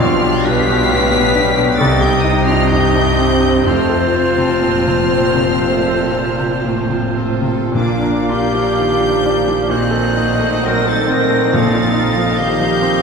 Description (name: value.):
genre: classical, romantic movement for piano and orchestra.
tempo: 53-70 BPM.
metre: 4/4.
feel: rubato.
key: unclear.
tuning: A4 = 441 Hz.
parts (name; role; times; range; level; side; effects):
clear chamber violin section; melody; 0.0-13.0 s; D6 to B6; -23 LUFS; left 2 dB; none.
clear concert grand piano; melody; 0.0-13.0 s; B1 to Bb4; -18 LUFS; left 2 dB; none.
bright clarinet; second line; 0.0-13.0 s; D4 to B4; -24 LUFS; left 1 dB; none.
clear oboe; second line; 0.0-13.0 s; C5 to F5; -24 LUFS; right 2 dB; none.
rich studio violin section; second line; 0.0-13.0 s; G3 to F5; -27 LUFS; left 3 dB; none.
silver concert flute; second line; 0.0-13.0 s; Eb5 to A5; -26 LUFS; left 1 dB; none.
warm studio viola section; accompaniment; 0.0-13.0 s; G3 to F4; -21 LUFS; right 2 dB; none.
clear trombone section; sustained chords; 0.0-13.0 s; Eb3 to Eb4; -27 LUFS; right 4 dB; none.
dark French horn section; sustained chords; 0.0-13.0 s; D4 to B4; -21 LUFS; left 1 dB; none.
rich studio cello section; bass; 0.0-13.0 s; F2 to C3; -24 LUFS; right 2 dB; none.
rich symphonic double bass section; bass; 0.0-13.0 s; F1 to C2; -23 LUFS; right 2 dB; none.
timpani; percussion; 7.7-12.8 s; Bb2; -22 LUFS; left 1 dB; none.
room: wet concert hall reverb, RT60 2.1 s.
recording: heard from further back in the room.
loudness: -12 LUFS.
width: side -5 dB against mid.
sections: 0.0-13.0 A section.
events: none.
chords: 0.0 G7/B; 1.8 Cm; 3.7 F; 7.8 Bb; 9.7 Adim7/Bb; 11.5 F7/Bb.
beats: 0.92 1.79 2.71 | 3.67 4.66 5.67 6.70 | 7.75 8.80 9.72 10.66 | 11.54 12.40.